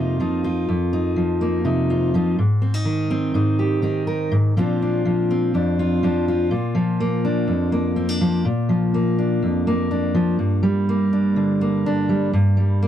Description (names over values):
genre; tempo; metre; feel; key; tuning
folk; 124 BPM; 4/4; straight; Bb major; A4 = 441 Hz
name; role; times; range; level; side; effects
fingerpicked steel-string acoustic guitar; solo; 0.0-12.9 s; F2 to Bb4; -18 LUFS; equal; none
room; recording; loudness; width
light reverb; dry, close 1970s-style studio recording; -18 LUFS; side -10 dB against mid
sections
0.0-6.5 A section; 6.5-12.9 B section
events
build-up 0.0-6.5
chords
0.0 F7sus4; 2.4 Abadd9; 4.6 Bbadd9; 10.4 Gm